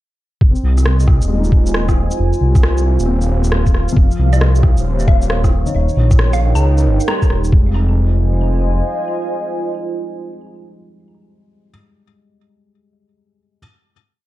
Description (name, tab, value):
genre	future garage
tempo	135 BPM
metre	4/4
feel	swing 64% on 16ths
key	F minor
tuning	A4 = 437 Hz
part	dark analog pad	sustained chords	1.0-11.7 s	Eb4 to Ab5	-23 LUFS	right 2 dB	chorus, sidechain pumping
part	swelling detuned saw bass	bass	0.4-8.8 s	Eb1 to Db2	-14 LUFS	equal	sidechain pumping
part	electronic kick drum	drums	0.4-7.6 s	none	-13 LUFS	equal	none
part	felt-muted upright piano	accompaniment	0.5-13.6 s	Eb3 to F4	-26 LUFS	left 4 dB	sidechain pumping, low-pass filter, ping-pong delay
part	electronic shaker and rim click	drums	0.6-7.5 s	none	-23 LUFS	equal	overdrive
part	mallet-like synth pluck	melody	4.3-7.5 s	Eb5 to Bb5	-27 LUFS	equal	chorus, phaser, tape echo
room	light reverb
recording	cassette tape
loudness	-12 LUFS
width	side -16 dB against mid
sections	0.4-7.5 groove; 7.5-11.1 final chord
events	band accent 7.1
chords	0.4 Fm7; 4.0 Dbmaj7; 5.7 Eb7; 7.5 Fm7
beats	| 0.41 0.86 1.30 1.75 | 2.19 2.63 3.08 3.52 | 3.97 4.41 4.86 5.30 | 5.75 6.19 6.63 7.08 | 7.52 7.97 8.41 8.86 | 9.30 9.75 10.19 10.63